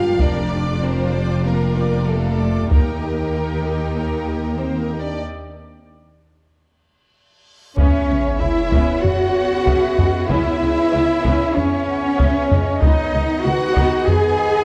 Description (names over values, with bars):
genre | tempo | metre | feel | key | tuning
cinematic, epic orchestral film score | 95 BPM | 4/4 | straight | C# minor from 7.8 s | A4 = 445 Hz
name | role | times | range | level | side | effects
rich studio violin section | melody | 0.0-14.6 s | A4 to G#5 | -30 LUFS | equal | none
warm symphonic violin section | second line | 0.0-14.6 s | Bb4 to D6 | -36 LUFS | equal | none
rich symphonic viola section | accompaniment | 0.0-14.0 s | D#3 to D5 | -33 LUFS | equal | none
mellow French horn section | sustained chords | 0.0-14.6 s | A3 to G#4 | -27 LUFS | equal | none
rich symphonic string section | sustained chords | 0.0-14.6 s | B3 to G5 | -34 LUFS | equal | none
rich symphonic double bass section | bass | 0.0-13.8 s | F1 to Eb2 | -26 LUFS | equal | none
warm symphonic cello section | bass | 0.0-14.6 s | Eb2 to G#4 | -25 LUFS | equal | none
taiko ensemble | drums | 0.2-3.3, 7.8-14.4 s | none | -22 LUFS | equal | none
reverse cymbal and sub drop | sound effects | 7.8-10.3 s | none | -29 LUFS | equal | none
mellow hollow flute section | second line | 7.8-14.6 s | B4 to F#5 | -31 LUFS | equal | none
warm trombone section | sustained chords | 7.8-14.6 s | C#3 to B3 | -33 LUFS | equal | none
mellow trumpet | stabs | 7.8-14.6 s | C#4 to G#4 | -27 LUFS | equal | none
room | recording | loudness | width
moderate scoring stage reverb, RT60 1.8 s | dark, warm production | -18 LUFS | mono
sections
0.0-7.8 A section; 7.8-14.6 B section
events
break 5.2-7.8; reverse cymbal 7.8; impact 7.8-10.3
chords
0.2 Bb/F; 2.7 Eb; 5.2 N.C.; 7.8 C#m7; 12.8 G#m/C#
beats
| 0.20 0.82 1.44 2.07 | 2.70 3.33 3.96 4.59 | 5.22 5.85 6.49 7.14 | 7.78 8.41 9.04 9.67 | 10.30 10.93 11.56 12.19 | 12.82 13.45 14.07